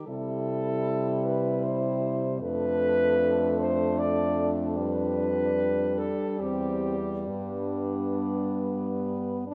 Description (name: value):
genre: classical, lyrical piece for horn quartet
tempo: 66-79 BPM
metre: 3/4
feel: rubato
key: C major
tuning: A4 = 439 Hz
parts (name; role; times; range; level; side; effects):
- warm French horn; melody; 0.0-9.4 s; D4 to D5; -31 LUFS; equal; none
- mellow French horn; bass; 0.0-9.5 s; E2 to C3; -35 LUFS; equal; none
- warm French horn; second line; 0.1-9.5 s; B3 to E4; -35 LUFS; equal; none
- warm French horn; accompaniment; 0.1-9.5 s; G3 to A3; -35 LUFS; equal; none
room: moderate recital hall reverb, RT60 1.7 s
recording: none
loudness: -27 LUFS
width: mono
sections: 0.0-9.5 A section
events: none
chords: 0.1 C; 2.4 Dm/F; 4.8 G7/F; 6.4 C/E; 7.3 G